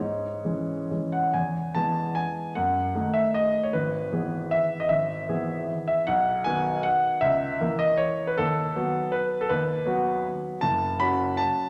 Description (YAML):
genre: classical, piano waltz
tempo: 129-169 BPM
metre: 3/4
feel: rubato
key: E major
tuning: A4 = 440 Hz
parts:
  - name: warm grand piano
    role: solo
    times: 0.0-11.7 s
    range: F#1 to B5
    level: -26 LUFS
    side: equal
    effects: none
room: wet recital hall reverb, RT60 1.5 s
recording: none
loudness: -26 LUFS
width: mono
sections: 0.0-1.3 A section; 1.3-11.7 B section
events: none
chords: 0.0 C#m; 1.3 E; 2.6 D#dim/F#; 3.7 E/G#; 6.1 B; 7.2 A#dim/C#; 8.4 B/D#; 10.6 F#m